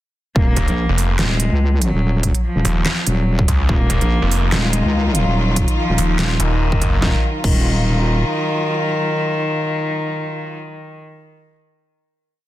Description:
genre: heavy wobble dubstep.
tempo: 144 BPM.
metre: 4/4.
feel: swing 55% on 16ths, half-time.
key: Eb minor.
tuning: A4 = 441 Hz.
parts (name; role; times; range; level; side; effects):
dark cello; melody; 0.4-11.0 s; Eb3 to Bb3; -22 LUFS; left 1 dB; tape echo.
wobble bass; bass; 0.4-8.2 s; Eb1 to Db2; -17 LUFS; equal; chorus, overdrive.
electronic kick drum; drums; 0.4-7.6 s; none; -18 LUFS; equal; none.
snarling distorted saw bass; bass; 0.6-7.0 s; Eb1 to Db2; -18 LUFS; equal; distortion, overdrive.
dubstep drum kit; drums; 0.6-7.6 s; crash cymbal, handclaps, hi-hat, snare drum; -23 LUFS; right 1 dB; none.
rich symphonic string section; sustained chords; 3.7-10.6 s; Eb3 to F4; -25 LUFS; left 1 dB; sidechain pumping.
room: light reverb, digital ambience.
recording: dense, heavily limited modern master.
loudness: -15 LUFS.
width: side -14 dB against mid.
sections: 0.4-7.0 drop; 7.0-10.4 final chord.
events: drop 0.4-7.0.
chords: 0.4 Ebmadd9.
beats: | 0.36 0.77 1.19 1.61 | 2.02 2.44 2.86 3.27 | 3.69 4.11 4.52 4.94 | 5.36 5.77 6.19 6.61 | 7.02 7.44 7.86 8.27 | 8.69 9.11 9.52 9.94.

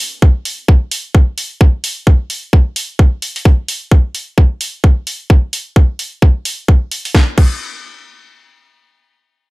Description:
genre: bass house.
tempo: 130 BPM.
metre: 4/4.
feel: swing 59% on 16ths.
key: none.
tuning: none.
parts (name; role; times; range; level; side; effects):
electronic kick drum; drums; 0.2-7.5 s; none; -8 LUFS; equal; none.
garage drum kit; drums; 0.5-7.5 s; crash cymbal, hi-hat, snare drum; -20 LUFS; equal; none.
room: little or no reverb.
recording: none.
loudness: -11 LUFS.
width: side -22 dB against mid.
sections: 0.0-7.1 A section; 7.1-9.5 B section.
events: none.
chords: none.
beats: 0.22 0.68 1.15 | 1.61 2.07 2.53 2.99 | 3.45 3.92 4.38 4.84 | 5.30 5.76 6.22 6.68 | 7.15.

